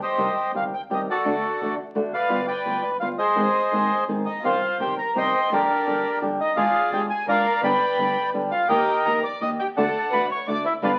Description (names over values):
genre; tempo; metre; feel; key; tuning
tango; 170 BPM; 3/4; rubato; unclear; A4 = 440 Hz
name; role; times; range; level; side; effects
bandoneon; melody; 0.0-11.0 s; F#4 to Eb6; -24 LUFS; equal; none
flamenco guitar; accompaniment; 0.2-10.9 s; C3 to Ab4; -30 LUFS; equal; none
rich double bass; bass; 0.2-11.0 s; F1 to Eb2; -43 LUFS; equal; none
warm violin; second line; 4.3-10.9 s; D4 to Eb5; -32 LUFS; equal; none
room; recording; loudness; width
wet studio reverb, RT60 0.8 s; very old 78 rpm record, vinyl crackle; -23 LUFS; mono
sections
0.0-11.0 A section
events
none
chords
0.2 Cm; 1.3 D; 2.3 G7; 3.4 Ab; 4.4 Cm; 5.5 Gm/Bb; 6.6 Ddim/Ab; 7.6 G; 8.7 Eb; 9.8 D